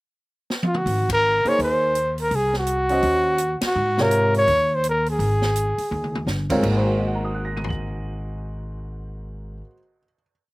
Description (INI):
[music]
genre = modal jazz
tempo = 167 BPM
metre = 4/4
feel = swing 63% on 8ths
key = Ab mixolydian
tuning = A4 = 441 Hz
[part]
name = open jazz drum kit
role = drums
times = 0.5-7.8 s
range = crash cymbal, hi-hat, kick drum, ride cymbal, snare drum, toms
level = -30 LUFS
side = equal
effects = none
[part]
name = mellow trumpet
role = melody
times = 0.7-6.3 s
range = F4 to Db5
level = -20 LUFS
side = equal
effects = slapback echo
[part]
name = upright bass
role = bass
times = 0.9-9.6 s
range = G1 to Ab2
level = -26 LUFS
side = equal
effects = none
[part]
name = warm upright piano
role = accompaniment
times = 1.4-10.5 s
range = Ab2 to Gb7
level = -25 LUFS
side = equal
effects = none
[sound]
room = little or no reverb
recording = recorded outdoors, with no room sound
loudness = -19 LUFS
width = side -21 dB against mid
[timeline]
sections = 0.0-0.9 pickup bar; 0.9-6.6 A section; 6.6-9.5 final chord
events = drum fill 0.5-0.9, 5.9-6.3; band accent 1.0, 3.6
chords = 0.0 N.C.; 0.9 Ab9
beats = 0.15 0.51 | 0.87 1.23 1.59 1.95 | 2.31 2.67 3.03 3.39 | 3.75 4.11 4.47 4.83 | 5.19 5.55 5.91 6.27 | 6.63 6.99 7.35 7.71 | 8.07 8.43 8.78 9.14